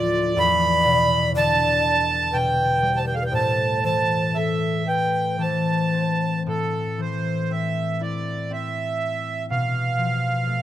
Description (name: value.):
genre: celtic folk, Celtic slow air.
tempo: 55-64 BPM.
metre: 3/4.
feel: rubato.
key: A minor.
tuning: A4 = 440 Hz.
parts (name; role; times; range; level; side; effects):
accordion; melody; 0.0-10.6 s; A4 to B5; -22 LUFS; right 3 dB; none.
breathy mellow long shakuhachi; second line; 0.0-6.4 s; F4 to D5; -25 LUFS; left 2 dB; none.
concert harp; accompaniment; 0.0-10.6 s; D2 to E4; -25 LUFS; left 2 dB; none.
room: light reverb, small room ambience.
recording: rough home demo mix.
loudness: -20 LUFS.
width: side -12 dB against mid.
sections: 0.0-6.5 A section; 6.5-10.6 B section.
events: none.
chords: 0.4 Em7; 3.3 Am; 9.5 B7(b5, no3).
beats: | 0.37 1.35 2.33 | 3.32 4.34 5.39 | 6.47 7.49 8.49 | 9.48 10.45.